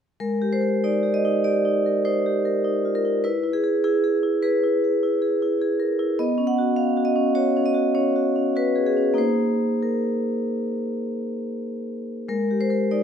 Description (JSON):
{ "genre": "classical, contemporary piece for solo vibraphone", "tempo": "100 BPM", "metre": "5/4", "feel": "rubato", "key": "unclear", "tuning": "A4 = 440 Hz", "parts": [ { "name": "vibraphone with medium hard mallets", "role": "solo", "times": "0.2-13.0 s", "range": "Ab3 to F#5", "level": "-20 LUFS", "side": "equal", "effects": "none" } ], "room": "moderate recital hall reverb, RT60 1.5 s", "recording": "none", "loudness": "-20 LUFS", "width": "side -8 dB against mid", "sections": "0.2-13.0 A section", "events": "none", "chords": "0.2 Abmaj9; 3.2 E; 6.2 Bsus2; 9.2 Bb9sus4; 12.3 Abmaj9" }